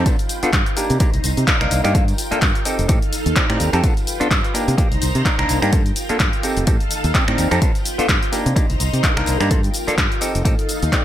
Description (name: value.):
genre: filtered disco house.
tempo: 127 BPM.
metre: 4/4.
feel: swing 56% on 16ths.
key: G minor.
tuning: A4 = 441 Hz.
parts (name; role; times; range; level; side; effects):
overdriven clav; accompaniment; 0.0-11.0 s; Bb3 to D5; -22 LUFS; equal; phaser, sidechain pumping.
string machine, full ensemble; sustained chords; 0.0-11.0 s; Eb4 to Bb5; -27 LUFS; equal; phaser, ensemble chorus, sidechain pumping.
electronic kick drum; drums; 0.1-11.0 s; none; -19 LUFS; equal; none.
punchy analog drum machine; drums; 0.1-11.0 s; cabasa, finger snaps, handclaps, hi-hat; -23 LUFS; left 1 dB; sidechain pumping on hats, sidechain pumping on perc, sidechain pumping on cymbals, gated reverb.
tambourine; percussion; 0.1-11.0 s; none; -34 LUFS; left 2 dB; none.
modern bright fingered electric bass; bass; 0.4-10.9 s; F1 to C3; -21 LUFS; equal; sidechain pumping.
room: light reverb, digital ambience.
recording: bright 1980s-style digital production.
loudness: -16 LUFS.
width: side -12 dB against mid.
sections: 0.0-11.0 A section.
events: none.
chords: 0.1 G7; 0.8 Cm7; 1.9 Gm7; 2.7 F7; 3.8 G7; 4.5 Cm7; 5.7 Gm7; 6.4 F7; 7.6 G7; 8.3 Cm7; 9.5 Gm7; 10.2 F7.